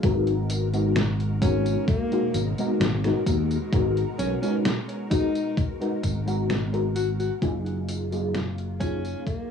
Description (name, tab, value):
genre	vaporwave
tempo	65 BPM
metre	4/4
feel	straight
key	unclear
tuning	A4 = 440 Hz
part	mellow FM electric piano	accompaniment	0.0-9.4 s	B2 to A#4	-27 LUFS	left 2 dB	phaser, ensemble chorus, cassette tape, analog delay
part	soft string machine	sustained chords	0.1-9.5 s	B2 to A#4	-35 LUFS	left 1 dB	ensemble chorus, vintage 12-bit sampler grit, cassette tape
part	fingered electric bass	bass	0.0-9.1 s	F#1 to D#2	-27 LUFS	equal	none
part	detuned 8-bit digital drum machine	drums	0.0-9.5 s	hi-hat, snare drum, tambourine	-30 LUFS	left 1 dB	overdrive
part	electronic kick drum	drums	0.0-9.5 s	none	-25 LUFS	equal	overdrive
part	breathy alto saxophone	melody	1.4-9.5 s	A#3 to F#4	-31 LUFS	left 1 dB	tape echo
room	light reverb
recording	home recording on cassette, small room ambience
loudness	-23 LUFS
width	side -7 dB against mid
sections	0.0-9.5 A section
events	fade-out 5.0-9.5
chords	0.0 G#m9; 7.4 F#maj13